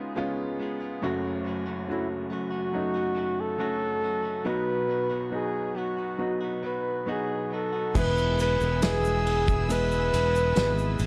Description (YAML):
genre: pop ballad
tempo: 69 BPM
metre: 4/4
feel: straight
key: E major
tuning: A4 = 437 Hz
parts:
  - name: warm flugelhorn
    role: melody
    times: 0.0-11.1 s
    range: E4 to B4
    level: -31 LUFS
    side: equal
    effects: none
  - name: bright upright piano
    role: accompaniment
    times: 0.0-11.1 s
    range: F#1 to B4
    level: -33 LUFS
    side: equal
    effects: none
  - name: direct-recorded clean electric guitar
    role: arpeggios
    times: 0.0-11.1 s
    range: F#2 to G#4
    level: -41 LUFS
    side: equal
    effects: none
  - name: clear studio string section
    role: sustained chords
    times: 8.0-11.1 s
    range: B4 to E6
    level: -42 LUFS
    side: equal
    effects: none
  - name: sustaining fretless electric bass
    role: bass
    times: 8.0-11.1 s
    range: E1 to A1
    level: -30 LUFS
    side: equal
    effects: none
  - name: loose indie drum kit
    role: drums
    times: 8.0-11.1 s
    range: crash cymbal, kick drum, ride cymbal, snare drum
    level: -32 LUFS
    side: equal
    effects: none
  - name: tube shaker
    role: percussion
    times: 8.0-11.1 s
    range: none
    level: -49 LUFS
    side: equal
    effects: none
room: small room ambience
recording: dark, warm production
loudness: -27 LUFS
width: mono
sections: 0.0-8.0 A section; 8.0-11.1 B section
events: none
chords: 0.0 C#7; 1.0 F#m; 4.5 B; 8.0 E